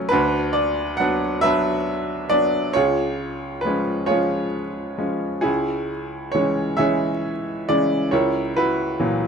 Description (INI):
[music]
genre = classical, lyrical solo piano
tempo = 45 BPM (dotted quarters)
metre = 6/8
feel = rubato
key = unclear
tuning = A4 = 440 Hz
[part]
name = bright upright piano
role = solo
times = 0.0-9.3 s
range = C#2 to F#5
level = -19 LUFS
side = right 1 dB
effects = none
[sound]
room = light reverb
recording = close, detailed microphones, vinyl crackle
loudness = -19 LUFS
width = side -6 dB against mid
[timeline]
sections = 0.0-9.3 A section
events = none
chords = 0.1 Bm/D; 2.8 C#; 5.4 C#m; 8.1 F#7/C#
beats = | 0.11 1.43 | 2.75 4.08 | 5.43 6.79 | 8.12